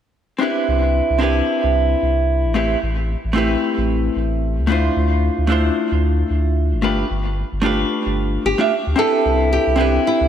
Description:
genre	sunset chillout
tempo	112 BPM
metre	4/4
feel	swing 56% on 16ths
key	unclear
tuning	A4 = 441 Hz
part	vintage hollow-body jazz guitar	accompaniment	0.4-10.3 s	A3 to E5	-18 LUFS	equal	auto-pan, diffuse ambient delay
part	warm sub bass	bass	0.7-10.3 s	G1 to D2	-19 LUFS	equal	none
part	flamenco guitar	melody	8.5-10.3 s	E4 to A4	-19 LUFS	right 1 dB	wide subtle chorus, ping-pong delay
room	moderate plate reverb, RT60 2.7 s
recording	dreamy mix soaked in reverb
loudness	-16 LUFS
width	side -9 dB against mid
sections	0.4-9.0 A section; 9.0-10.3 B section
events	filter sweep on sub bass 0.4-9.0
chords	0.4 Am7; 4.7 Dm7; 6.8 G7; 9.0 Am7

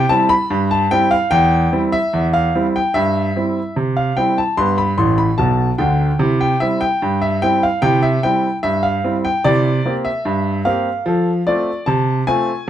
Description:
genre	ragtime piano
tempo	74 BPM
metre	2/4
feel	straight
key	C major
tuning	A4 = 440 Hz
part	clear grand piano	solo	0.0-12.7 s	A1 to C6	-14 LUFS	equal	none
room	moderate studio reverb, RT60 0.9 s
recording	dark, warm production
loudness	-14 LUFS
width	side -11 dB against mid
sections	0.0-12.7 A section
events	grand piano fill 5.0-6.2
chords	0.0 C; 1.3 C/E; 2.9 C/G; 4.6 G; 6.2 C; 9.4 C7; 11.1 F

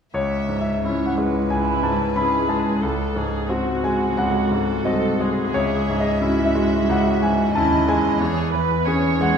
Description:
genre	classical, romantic movement for piano and orchestra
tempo	89 BPM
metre	4/4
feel	rubato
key	C# minor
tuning	A4 = 440 Hz
part	bright concert grand piano	melody	0.1-9.4 s	C#2 to B5	-20 LUFS	left 1 dB	none
part	warm chamber cello section	bass	0.1-9.4 s	B#1 to E2	-27 LUFS	right 2 dB	none
part	warm chamber violin section	melody	0.2-9.4 s	F#4 to E5	-29 LUFS	left 4 dB	none
part	rich chamber viola section	accompaniment	1.5-9.4 s	E4 to C#5	-26 LUFS	right 6 dB	none
room	wet scoring stage reverb, RT60 1.8 s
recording	minimal, uncompressed stereo recording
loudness	-18 LUFS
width	side -7 dB against mid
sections	0.1-9.4 A section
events	none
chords	0.1 C#m; 2.8 G#7b9/C#; 5.5 C#m; 8.2 C#m/E

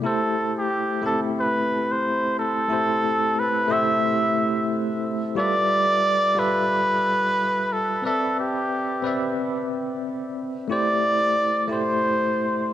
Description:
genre	chillout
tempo	90 BPM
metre	4/4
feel	swing 57% on 16ths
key	A minor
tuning	A4 = 439 Hz
part	trumpet with cup mute	melody	0.0-12.7 s	G4 to E5	-22 LUFS	equal	tape echo
part	bell-like tine electric piano	accompaniment	0.0-12.7 s	G3 to E5	-25 LUFS	equal	medium stereo tremolo, auto-pan, cassette tape
room	moderate lush hall reverb, RT60 2.4 s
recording	home recording on cassette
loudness	-20 LUFS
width	side -12 dB against mid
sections	0.0-12.7 A section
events	none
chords	0.0 Am7; 5.4 G13; 8.0 Cmaj9; 10.7 Am7

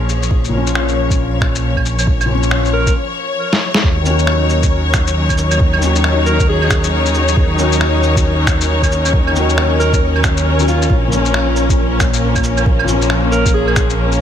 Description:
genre	future garage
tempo	136 BPM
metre	4/4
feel	swing 61% on 16ths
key	unclear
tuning	A4 = 439 Hz
part	felt-muted upright piano	accompaniment	0.0-14.2 s	Bb2 to Gb4	-21 LUFS	left 4 dB	lush chorus, sidechain pumping, ping-pong delay
part	warm studio string section	sustained chords	0.0-14.2 s	F3 to Db5	-18 LUFS	left 1 dB	sidechain pumping
part	dark detuned saw bass	bass	0.0-14.2 s	Bb1 to Eb2	-17 LUFS	equal	sidechain pumping
part	electronic shaker, finger snaps, claves, snare drum and cabasa	drums	0.1-14.2 s	none	-20 LUFS	equal	none
part	electronic kick drum	drums	0.3-13.9 s	none	-16 LUFS	equal	overdrive
part	mellow alto saxophone	melody	2.7-2.9, 6.3-6.9, 9.8-14.0 s	F4 to Bb4	-23 LUFS	right 1 dB	vintage 12-bit sampler grit, tape echo
room	light reverb, studio reverb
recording	none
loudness	-12 LUFS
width	side -9 dB against mid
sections	0.0-3.8 A section; 3.8-14.2 B section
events	break 3.0-3.8; drum fill 3.5-3.8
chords	0.0 Bbm; 3.8 Ebm7; 10.9 Bbm

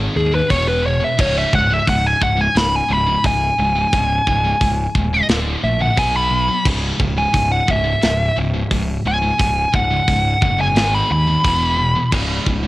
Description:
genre	heavy metal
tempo	88 BPM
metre	4/4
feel	straight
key	C# minor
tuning	A4 = 439 Hz
part	scooped high-gain guitar	riff	0.0-12.7 s	C#2 to B3	-22 LUFS	equal	distortion
part	fuzz fingered electric bass	bass	0.0-12.7 s	C#1 to D#2	-21 LUFS	equal	overdrive
part	high-gain lead guitar	melody	0.2-12.1 s	G#4 to B5	-18 LUFS	equal	distortion, cassette tape, analog delay
part	tight metal drum kit	drums	0.5-12.6 s	crash cymbal, hi-hat, kick drum, snare drum	-20 LUFS	equal	cassette tape
room	small room ambience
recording	home recording on cassette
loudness	-14 LUFS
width	side -18 dB against mid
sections	0.0-12.7 A section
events	lead electric guitar solo 0.0-12.7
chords	0.0 G#5; 0.5 E5; 1.2 C#5; 5.3 D5; 6.0 B5; 6.7 C#5; 10.8 G#5; 11.4 E5; 12.1 C#5

